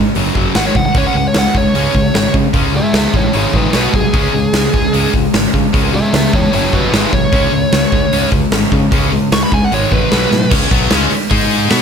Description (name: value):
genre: hard rock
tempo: 151 BPM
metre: 4/4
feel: straight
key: unclear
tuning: A4 = 440 Hz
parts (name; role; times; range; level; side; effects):
- sludgy distorted guitar; riff; 0.0-10.5 s; F#2 to C#4; -19 LUFS; right 12 dB; overdrive
- tight distorted guitar; riff; 0.0-11.8 s; F#2 to B4; -18 LUFS; left 17 dB; distortion
- growling fingered electric bass; bass; 0.0-11.8 s; F#1 to C#3; -19 LUFS; equal; overdrive
- huge arena drum kit; drums; 0.2-11.8 s; crash cymbal, hi-hat, kick drum, snare drum; -15 LUFS; equal; none
- bluesy overdriven lead guitar; melody; 0.6-10.5 s; D#4 to C#6; -18 LUFS; right 1 dB; distortion, slapback echo
- heavy high-gain guitar; riff; 10.5-11.8 s; B2 to B4; -17 LUFS; equal; distortion
room: studio ambience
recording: none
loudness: -11 LUFS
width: side -7 dB against mid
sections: 0.0-10.5 A section; 10.5-11.8 B section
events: lead electric guitar solo 0.0-10.5; drum fill 10.3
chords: 0.2 F#5; 0.6 G#5; 1.0 C#m; 3.3 G#5; 3.7 B5; 4.1 C#m; 6.5 F#5; 6.9 G#5; 7.3 C#5; 9.7 G#5; 10.1 B5; 10.5 C#5; 11.3 G#5